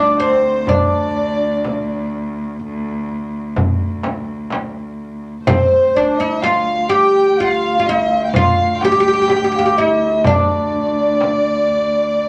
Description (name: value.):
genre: Arabic maqam ensemble.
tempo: 125 BPM (eighths).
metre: 10/8.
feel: straight.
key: D maqam bayati.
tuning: A4 = 440 Hz.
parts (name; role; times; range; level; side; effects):
oud; melody; 0.0-12.3 s; C4 to G4; -18 LUFS; equal; none.
breathy mellow ney; second line; 0.0-12.3 s; C5 to G5; -21 LUFS; equal; none.
rich chamber violin section; second line; 0.0-12.3 s; C5 to G5; -29 LUFS; equal; none.
warm cello; drone; 0.0-12.3 s; D2; -27 LUFS; equal; none.
darbuka; percussion; 0.7-12.3 s; none; -23 LUFS; equal; none.
frame drum; percussion; 0.7-11.4 s; none; -24 LUFS; equal; none.
room: moderate club reverb, RT60 0.8 s.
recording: none.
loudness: -16 LUFS.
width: mono.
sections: 0.0-12.3 A section.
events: none.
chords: none.